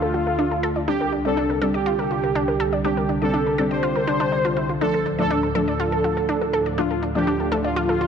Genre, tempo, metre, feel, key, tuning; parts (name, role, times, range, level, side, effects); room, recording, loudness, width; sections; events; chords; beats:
melodic techno; 122 BPM; 4/4; straight; D minor; A4 = 441 Hz
analog synth brass; melody; 0.0-8.1 s; F4 to C5; -24 LUFS; right 2 dB; chorus, tape echo
sweeping resonant pad; sustained chords; 0.0-8.1 s; C2 to A4; -28 LUFS; equal; chorus
wide unison pluck; arpeggios; 0.0-8.1 s; D4 to D5; -26 LUFS; equal; ping-pong delay
synth brass stab; stabs; 0.0-8.1 s; F3 to D4; -27 LUFS; left 2 dB; chorus, ping-pong delay
analog drone; drone; 0.0-8.1 s; D3; -30 LUFS; equal; chorus
electronic hi-hat and shaker; drums; 0.1-8.1 s; -48 LUFS; left 6 dB
moderate lush hall reverb, RT60 2.7 s; -19 LUFS; side -7 dB against mid
0.0-8.1 A section
0.0 Dm; 0.9 Csus2; 4.8 Dm
0.39 | 0.88 1.37 1.86 2.35 | 2.85 3.34 3.83 4.32 | 4.81 5.30 5.80 6.29 | 6.78 7.27 7.76